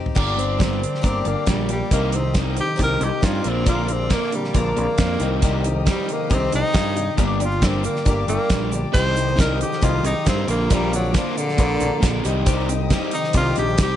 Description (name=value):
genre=folk rock and heartland rock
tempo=136 BPM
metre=4/4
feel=straight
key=C minor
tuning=A4 = 440 Hz
part: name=picked twelve-string acoustic guitar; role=accompaniment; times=0.0-14.0 s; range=G2 to Bb4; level=-27 LUFS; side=left 6 dB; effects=plate reverb
part: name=dark symphonic string section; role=sustained chords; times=0.1-14.0 s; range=Bb4 to Eb6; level=-35 LUFS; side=equal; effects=plate reverb
part: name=damped 70s drum kit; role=drums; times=0.1-13.9 s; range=crash cymbal, hi-hat, kick drum, snare drum, toms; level=-21 LUFS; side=equal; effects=none
part: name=crunchy overdriven guitar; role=riff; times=0.2-14.0 s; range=G2 to Bb3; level=-26 LUFS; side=right 1 dB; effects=none
part: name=picked electric bass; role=bass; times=0.2-14.0 s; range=G1 to G2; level=-24 LUFS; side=equal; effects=none
part: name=clear tenor saxophone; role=melody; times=0.4-14.0 s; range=D3 to C5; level=-25 LUFS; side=equal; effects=plate reverb, tape echo
part: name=tube shaker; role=percussion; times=7.2-13.9 s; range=none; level=-40 LUFS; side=right 15 dB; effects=none
room=light reverb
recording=nothing above 10.6 kHz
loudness=-18 LUFS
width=side -11 dB against mid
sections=0.2-14.0 A section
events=break 0.0; drum fill 0.0; tenor saxophone solo 0.2-14.0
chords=0.2 Gm; 1.9 Cm; 3.5 Bb; 5.2 Cm; 7.2 Gm; 8.9 Cm; 10.5 Bb; 12.2 Cm